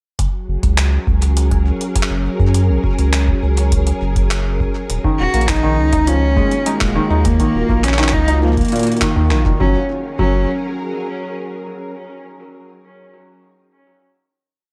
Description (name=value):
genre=IDM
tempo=102 BPM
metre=4/4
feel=straight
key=F# major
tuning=A4 = 439 Hz
part: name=soft string machine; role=sustained chords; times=0.4-11.9 s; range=D#3 to A#4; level=-27 LUFS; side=equal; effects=ensemble chorus
part: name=warm sub bass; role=bass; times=0.2-10.5 s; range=D#1 to F#2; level=-19 LUFS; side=equal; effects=none
part: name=electronic kick drum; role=drums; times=0.2-10.3 s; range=none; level=-22 LUFS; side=equal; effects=none
part: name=jungle sampler-style drum kit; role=drums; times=0.2-9.4 s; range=handclaps, hi-hat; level=-26 LUFS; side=equal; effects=digital delay
part: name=felt-muted upright piano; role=arpeggios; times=5.0-10.5 s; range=A#2 to D#4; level=-24 LUFS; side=equal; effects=tape echo
part: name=rich cello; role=melody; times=5.2-10.5 s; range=G#3 to F#4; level=-22 LUFS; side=equal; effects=vintage 12-bit sampler grit, tape echo
room=light reverb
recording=dark, warm production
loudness=-16 LUFS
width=mono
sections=0.2-9.6 groove; 9.6-12.0 final chord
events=none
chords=0.2 F#add9; 4.9 D#m7; 9.6 F#add9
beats=| 0.19 0.78 1.37 1.96 | 2.54 3.13 3.72 4.31 | 4.90 5.49 6.07 6.66 | 7.25 7.84 8.43 9.02 | 9.60 10.19 10.78 11.37